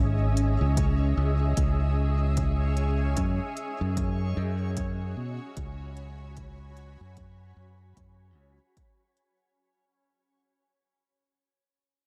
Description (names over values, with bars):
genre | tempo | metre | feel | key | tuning
ambient dub | 75 BPM | 4/4 | swing 60% on 16ths | unclear | A4 = 440 Hz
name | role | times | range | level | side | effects
granular cloud pad | sustained chords | 0.0-9.6 s | C#4 to B5 | -37 LUFS | equal | built-in reverb
modern bright fingered electric bass | bass | 0.0-8.6 s | G#1 to B2 | -29 LUFS | equal | none
backwards swelling texture | texture | 0.0-9.6 s | C#4 to C#5 | -43 LUFS | equal | built-in reverb
electronic hi-hat | drums | 0.4-9.4 s | none | -43 LUFS | equal | none
electronic kick drum | drums | 0.8-9.0 s | none | -33 LUFS | equal | none
room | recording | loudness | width
little or no reverb | echo-heavy mix | -27 LUFS | mono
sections
0.0-9.6 A section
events
fade-out 0.0-9.6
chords
0.0 C#m; 3.2 F#9sus4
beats
0.77 1.57 2.37 | 3.17 3.97 4.77 5.57 | 6.37 7.17 7.97 8.77